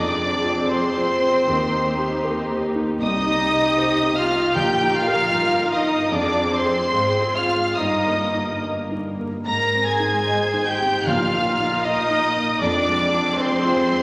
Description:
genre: cinematic, emotional film score for orchestra.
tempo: 77 BPM.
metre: 4/4.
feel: rubato.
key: Eb major.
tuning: A4 = 440 Hz.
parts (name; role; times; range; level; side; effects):
warm studio violin section; melody; 0.0-14.0 s; C6 to Bb6; -27 LUFS; equal; none.
dark cor anglais; second line; 0.0-14.0 s; C4 to Bb4; -29 LUFS; equal; none.
hollow concert flute; second line; 0.0-14.0 s; C5 to Bb5; -30 LUFS; equal; none.
rich studio violin section; second line; 0.0-14.0 s; C5 to Bb5; -29 LUFS; equal; none.
felt-muted upright piano; accompaniment; 0.0-14.0 s; Bb1 to F5; -30 LUFS; equal; none.
warm studio viola section; accompaniment; 0.0-14.0 s; Bb3 to C5; -32 LUFS; equal; none.
mellow French horn section; sustained chords; 0.0-14.0 s; C4 to Bb4; -30 LUFS; equal; none.
rich studio cello section; bass; 0.0-14.0 s; Eb2 to C3; -34 LUFS; equal; none.
warm studio double bass section; bass; 0.0-14.0 s; F1 to Eb2; -37 LUFS; equal; none.
timpani; percussion; 4.6-5.7, 11.1-12.2 s; Bb2; -33 LUFS; equal; none.
room: wet scoring stage reverb, RT60 2.0 s.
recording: vinyl crackle.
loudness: -21 LUFS.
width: mono.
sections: 0.0-14.0 A section.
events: none.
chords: 0.0 Fm; 1.5 Eb; 3.0 Cm; 4.6 Bbsus4; 6.1 Fm; 7.8 Eb/G; 9.5 Ab; 11.1 Bbsus4; 12.6 Fm.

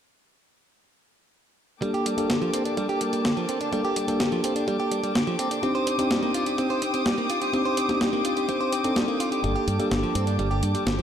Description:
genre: italo disco.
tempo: 126 BPM.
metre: 4/4.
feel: straight.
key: G minor.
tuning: A4 = 440 Hz.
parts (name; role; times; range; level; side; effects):
warm chamber string section; sustained chords; 1.8-11.0 s; Bb3 to Eb6; -30 LUFS; left 2 dB; none.
direct-recorded clean electric guitar; arpeggios; 1.8-11.0 s; D3 to C5; -29 LUFS; right 4 dB; low-pass filter, ping-pong delay.
mellow tine electric piano; stabs; 1.8-11.0 s; Bb3 to A4; -27 LUFS; left 1 dB; low-pass filter.
clean 12-bit digital drum machine; drums; 1.8-11.0 s; hi-hat, snare drum; -28 LUFS; equal; overdrive.
electronic kick drum; drums; 1.8-11.0 s; none; -39 LUFS; equal; none.
fingered electric bass with an envelope filter; bass; 9.4-11.0 s; G1 to G2; -26 LUFS; equal; none.
room: moderate lush hall reverb, RT60 2.0 s, digital ambience.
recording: dark, warm production.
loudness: -22 LUFS.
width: side -9 dB against mid.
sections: 1.8-11.0 A section.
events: none.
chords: 1.8 Gmadd9; 5.6 Cmadd9; 9.4 Gmadd9.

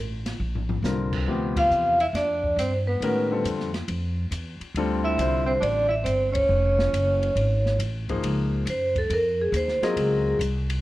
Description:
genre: modal jazz.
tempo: 138 BPM.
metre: 4/4.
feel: swing 66% on 8ths.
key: unclear.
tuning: A4 = 439 Hz.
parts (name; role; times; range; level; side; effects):
upright bass; bass; 0.0-10.8 s; F1 to A2; -27 LUFS; equal; none.
open jazz drum kit; drums; 0.3-10.8 s; crash cymbal, hi-hat, kick drum, ride cymbal, snare drum, toms; -34 LUFS; left 1 dB; none.
clear concert grand piano; accompaniment; 0.8-10.4 s; C3 to Eb5; -28 LUFS; left 4 dB; none.
vibraphone with medium hard mallets; melody; 1.6-10.4 s; Ab4 to F5; -23 LUFS; equal; none.
breathy tenor saxophone; second line; 1.6-7.7 s; B3 to F4; -32 LUFS; right 4 dB; none.
room: light reverb.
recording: worn, warbling old tape, cassette tape, warbly pitch drift.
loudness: -22 LUFS.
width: side -16 dB against mid.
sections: 0.0-8.2 A section; 8.2-10.8 B section.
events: drum fill 0.4-0.8; band accent 1.5, 6.3; vibraphone solo 8.2-10.8.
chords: 0.0 C7sus2; 1.3 Dm9; 6.5 Faug; 8.2 Bbm11.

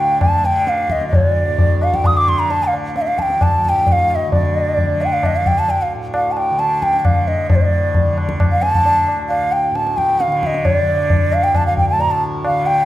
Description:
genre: indian classical, Hindustani.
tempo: 132 BPM.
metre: 7/4.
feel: straight.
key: D raga bhairavi.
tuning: A4 = 440 Hz.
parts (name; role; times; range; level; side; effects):
hollow bansuri; melody; 0.0-12.8 s; C5 to Eb6; -16 LUFS; equal; none.
tanpura; drone; 0.0-12.8 s; D2 to D3; -24 LUFS; equal; none.
tabla; percussion; 0.2-12.6 s; none; -18 LUFS; left 1 dB; none.
room: wet recital hall reverb, RT60 1.5 s.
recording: recorded in a church or concert hall.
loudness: -14 LUFS.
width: side -14 dB against mid.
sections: 0.0-7.5 A section; 7.5-12.8 B section.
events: none.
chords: none.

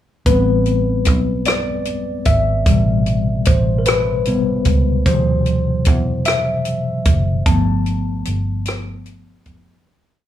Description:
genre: slow six-eight R&B.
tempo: 50 BPM (dotted quarters).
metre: 6/8.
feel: straight.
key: A minor.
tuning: A4 = 441 Hz.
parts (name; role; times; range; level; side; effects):
tine electric piano; accompaniment; 0.3-9.9 s; B2 to A5; -18 LUFS; left 2 dB; medium stereo tremolo, plate reverb.
vintage muted fingered electric bass; bass; 0.3-9.8 s; F#1 to E2; -19 LUFS; right 1 dB; none.
compact cocktail drum kit; drums; 0.3-9.6 s; hi-hat, kick drum, rim click; -18 LUFS; right 1 dB; none.
room: moderate studio reverb, RT60 0.8 s.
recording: studio ambience.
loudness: -15 LUFS.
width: side -12 dB against mid.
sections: 0.3-9.9 verse.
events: tine electric piano solo 0.3-9.9; fade-out 7.5-9.9.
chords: 0.3 Am9; 5.1 D13; 7.5 G9.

